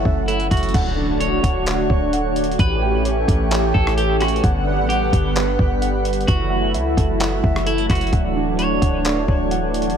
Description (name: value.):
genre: hip hop, atmospheric cloud-rap.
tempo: 130 BPM.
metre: 4/4.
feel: half-time.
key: D major.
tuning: A4 = 440 Hz.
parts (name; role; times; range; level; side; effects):
warm analog pad; sustained chords; 0.0-10.0 s; D3 to F#5; -22 LUFS; equal; chorus, sidechain pumping.
muted felt-like synth keys; arpeggios; 0.0-10.0 s; D4 to G5; -26 LUFS; right 5 dB; chorus, dub echo.
warm 808-style bass; bass; 0.0-9.9 s; D1 to C#2; -22 LUFS; equal; none.
drifting glass-harmonics texture; texture; 0.0-10.0 s; F#3 to F#5; -31 LUFS; right 1 dB; chorus, built-in reverb.
lo-fi sampler-style drum kit; drums; 0.1-10.0 s; crash cymbal, handclaps, hi-hat, kick drum, rim click; -21 LUFS; equal; none.
electric guitar at the edge of break-up; melody; 0.3-9.0 s; E4 to C#5; -27 LUFS; right 1 dB; wide subtle chorus, dub echo.
impact; sound effects; 0.7-2.6 s; none; -32 LUFS; equal; none.
room: digital ambience.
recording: echo-heavy mix.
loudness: -16 LUFS.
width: side -8 dB against mid.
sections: 0.7-10.0 A section.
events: impact 0.7-2.6.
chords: 0.0 F#m7; 0.7 Dmaj7; 2.6 A7; 4.4 Gmaj7; 6.3 F#m7; 8.1 Dmaj7.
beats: 0.28 | 0.74 1.21 1.67 2.13 | 2.59 3.05 3.51 3.98 | 4.44 4.90 5.36 5.82 | 6.28 6.74 7.21 7.67 | 8.13 8.59 9.05 9.51.